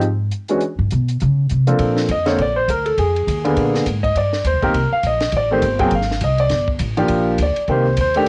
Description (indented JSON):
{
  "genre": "jazz piano trio",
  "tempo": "204 BPM",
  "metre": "4/4",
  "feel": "swing 60% on 8ths",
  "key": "Bb major",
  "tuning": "A4 = 440 Hz",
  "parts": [
    { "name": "upright bass", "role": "bass", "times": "0.0-8.3 s", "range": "G1 to Db3", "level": "-22 LUFS", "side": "equal", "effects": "none" },
    { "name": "compact cocktail drum kit", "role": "drums", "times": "0.0-8.3 s", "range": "hi-hat, kick drum, ride cymbal, snare drum", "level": "-30 LUFS", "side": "equal", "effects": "cassette tape" },
    { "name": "warm grand piano", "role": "melody", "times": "0.5-8.3 s", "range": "D3 to G5", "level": "-20 LUFS", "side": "equal", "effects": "cassette tape" }
  ],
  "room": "light reverb",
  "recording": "home recording on cassette, nothing above 10.3 kHz",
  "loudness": "-18 LUFS",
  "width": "mono",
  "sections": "0.0-1.8 A section; 1.8-8.3 A section",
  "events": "upright bass solo 0.0-1.8; grand piano solo 1.8-8.3",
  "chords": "0.0 N.C.; 0.6 Abm; 1.2 N.C.; 1.8 Bbmaj9; 3.0 Fm7; 3.6 Bb7b9; 4.1 Eb6; 5.3 Am7; 5.9 Ab; 6.5 Gm7; 7.7 Cm7"
}